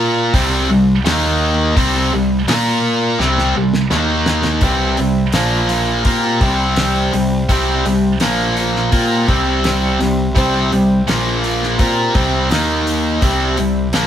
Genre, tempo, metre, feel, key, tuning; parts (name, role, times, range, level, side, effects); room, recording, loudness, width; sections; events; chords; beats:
classic rock; 84 BPM; 4/4; straight; A4 = 440 Hz
biting overdriven guitar; riff; 0.0-14.1 s; Bb2 to Bb4; -18 LUFS; left 6 dB
tight distorted guitar; riff; 0.0-14.1 s; Bb2 to Bb4; -18 LUFS; right 6 dB; distortion
fuzz picked electric bass; bass; 0.0-14.1 s; Bb1 to Bb2; -20 LUFS; equal; overdrive
damped 70s drum kit; drums; 0.3-14.1 s; hi-hat, kick drum, snare drum; -20 LUFS; equal
picked swing-style acoustic guitar; accompaniment; 4.6-14.1 s; Bb2 to Bb4; -23 LUFS; right 1 dB
moderate stone room reverb, RT60 1.0 s; band playing live in one room; -13 LUFS; side -10 dB against mid
0.0-4.6 A section; 4.6-14.1 B section
drum fill 3.2-4.6
0.3 C5; 1.1 Eb5; 1.8 C5; 2.5 Bb5; 3.2 C5; 3.9 Eb5; 4.6 C; 5.3 Bb5; 6.1 C; 8.2 Bb5; 8.9 C; 11.1 Bb5; 11.8 C; 12.5 Eb5; 13.2 C
0.34 1.05 | 1.77 2.48 3.20 3.91 | 4.63 5.34 6.06 6.78 | 7.49 8.21 8.93 9.64 | 10.36 11.08 11.79 12.51 | 13.22 13.94